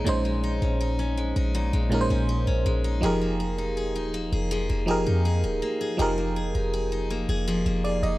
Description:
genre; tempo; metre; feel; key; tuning
R&B; 81 BPM; 4/4; straight; unclear; A4 = 441 Hz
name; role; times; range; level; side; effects
FM electric piano; accompaniment; 0.0-8.2 s; Bb2 to Eb5; -27 LUFS; right 2 dB; chorus
picked steel-string acoustic guitar; arpeggios; 0.0-8.2 s; Bb2 to Ab4; -30 LUFS; left 3 dB; analog delay
warm 808-style bass; bass; 0.0-8.2 s; Eb1 to F2; -26 LUFS; equal; none
room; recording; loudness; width
little or no reverb; dry, gritty hardware recording, cassette tape; -23 LUFS; side -17 dB against mid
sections
0.0-8.2 A section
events
none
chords
0.0 Bbm11; 3.0 Fm11

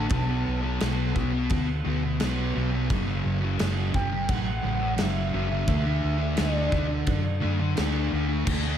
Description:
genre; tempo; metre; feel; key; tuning
rock, shoegaze and dream pop; 86 BPM; 4/4; straight; D major; A4 = 445 Hz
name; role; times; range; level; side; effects
warm velvety synth lead; melody; 0.0-7.4 s; D5 to A5; -33 LUFS; equal; chorus, ping-pong delay
fuzz guitar; riff; 0.0-8.8 s; F#2 to D4; -28 LUFS; equal; distortion, wide subtle chorus
hollow-body short-scale fingered electric bass; bass; 0.0-8.8 s; F#1 to F#2; -27 LUFS; equal; none
loose indie drum kit; drums; 0.1-8.6 s; crash cymbal, kick drum, snare drum; -30 LUFS; equal; none
room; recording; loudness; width
moderate plate reverb, RT60 1.6 s, studio reverb; dreamy mix soaked in reverb; -23 LUFS; side -9 dB against mid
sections
0.0-8.5 A section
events
none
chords
0.1 Bm7; 2.9 F#m7; 5.7 D

